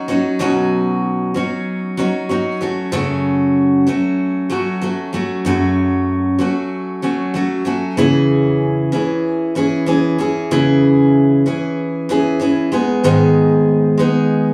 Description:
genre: pop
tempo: 95 BPM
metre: 4/4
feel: straight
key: C# minor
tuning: A4 = 441 Hz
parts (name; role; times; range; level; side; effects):
- picked steel-string acoustic guitar; solo; 0.0-14.5 s; F#2 to G#4; -16 LUFS; equal; none
room: wet studio reverb, RT60 0.6 s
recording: band playing live in one room, small room ambience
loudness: -16 LUFS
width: mono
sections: 0.0-14.5 A section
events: none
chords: 0.0 Badd9; 2.6 F#m; 8.0 C#m; 12.7 G#m

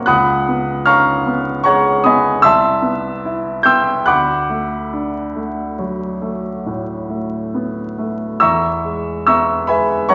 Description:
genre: classical, impressionist solo piano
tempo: 68-77 BPM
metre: 5/4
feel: rubato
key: unclear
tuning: A4 = 441 Hz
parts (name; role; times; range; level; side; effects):
- clear baby grand piano; solo; 0.0-10.1 s; C2 to G6; -17 LUFS; equal; none
room: wet recital hall reverb, RT60 1.4 s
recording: recorded in a church or concert hall, vinyl crackle, nothing above 7.5 kHz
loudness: -17 LUFS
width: mono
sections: 0.0-10.1 A section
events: none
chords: 0.1 Db9sus4; 2.4 Cmaj7; 4.1 D; 8.4 E

